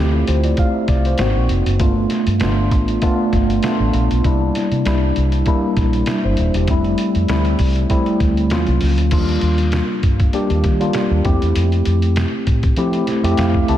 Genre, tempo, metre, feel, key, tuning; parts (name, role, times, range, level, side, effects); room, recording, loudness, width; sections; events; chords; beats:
polished 1980s jazz-funk pop; 98 BPM; 4/4; swing 54% on 16ths; A4 = 440 Hz
mellow tine electric piano; accompaniment; 0.0-13.8 s; F3 to A5; -18 LUFS; equal; fast stereo tremolo, analog chorus
vintage muted fingered electric bass; bass; 0.0-13.8 s; Eb1 to F3; -18 LUFS; equal
lo-fi sampler-style drum kit; drums; 0.3-13.8 s; crash cymbal, hi-hat, kick drum, snare drum; -21 LUFS; equal
moderate lush hall reverb, RT60 2.4 s; dreamy mix soaked in reverb; -14 LUFS; side -12 dB against mid
0.0-9.1 A section; 9.1-13.8 B section
tine electric piano fill 13.1-13.8
0.0 Dm9; 1.2 G#9; 1.8 G7; 4.2 C7; 6.7 Fmaj7; 8.5 Ebm9; 9.1 Ebmaj7; 11.3 Fmaj7
0.58 1.19 | 1.80 2.41 3.02 3.63 | 4.24 4.85 5.46 6.07 | 6.68 7.29 7.90 8.51 | 9.12 9.73 10.34 10.95 | 11.55 12.16 12.77 13.38